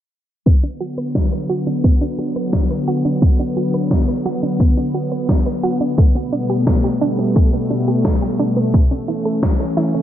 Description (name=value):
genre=synthwave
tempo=87 BPM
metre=4/4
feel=straight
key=B minor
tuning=A4 = 440 Hz
part: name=lush unison pad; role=sustained chords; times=0.8-10.0 s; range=B2 to C#4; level=-19 LUFS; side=left 1 dB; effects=chorus, sidechain pumping
part: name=analog pluck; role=arpeggios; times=0.5-10.0 s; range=A3 to D5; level=-24 LUFS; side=right 3 dB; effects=chorus, digital delay
part: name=electronic kick drum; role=drums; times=0.5-9.6 s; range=none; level=-14 LUFS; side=equal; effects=overdrive
part: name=electronic snare drum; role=drums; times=1.2-9.9 s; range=none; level=-23 LUFS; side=equal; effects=gated reverb, gated reverb snare
room=little or no reverb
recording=low-pass filter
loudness=-15 LUFS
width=side -11 dB against mid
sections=0.5-10.0 A section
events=filter sweep on synth arpeggio sound 0.5-10.0; filter sweep 0.5-10.0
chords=0.5 Bm; 6.0 Gadd9/B; 8.7 A